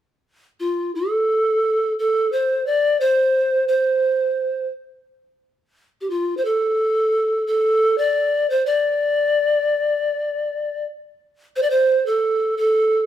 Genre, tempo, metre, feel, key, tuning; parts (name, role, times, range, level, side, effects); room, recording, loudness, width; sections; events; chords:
andean folk; 88 BPM; 4/4; straight; D minor; A4 = 440 Hz
polished pan flute; solo; 0.6-13.1 s; F4 to D5; -17 LUFS; equal
moderate large studio reverb, RT60 1.2 s; band playing live in one room; -17 LUFS; side -11 dB against mid
0.6-11.6 A section; 11.6-13.1 B section